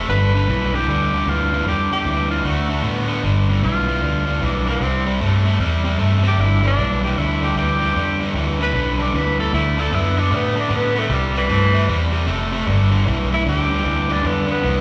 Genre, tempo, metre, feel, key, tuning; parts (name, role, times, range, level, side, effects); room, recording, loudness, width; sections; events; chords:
electric blues shuffle; 153 BPM; 4/4; swing 64% on 8ths; G mixolydian; A4 = 439 Hz
cranked stack guitar; riff; 0.0-14.8 s; G2 to B3; -24 LUFS; equal; overdrive, spring reverb, slapback echo
vintage muted fingered electric bass; bass; 0.0-14.8 s; F1 to A2; -22 LUFS; equal
breathy tenor saxophone; melody; 0.1-14.8 s; E3 to D5; -24 LUFS; equal; plate reverb, slapback echo
light reverb; live gig heard through the venue's PA, recital hall reverb; -19 LUFS; mono
0.0-3.2 A section; 3.2-14.8 B section
tenor saxophone solo 3.2-14.8
0.1 G; 2.4 D; 3.2 G; 4.8 C; 6.4 G; 9.5 D; 11.1 C; 12.7 G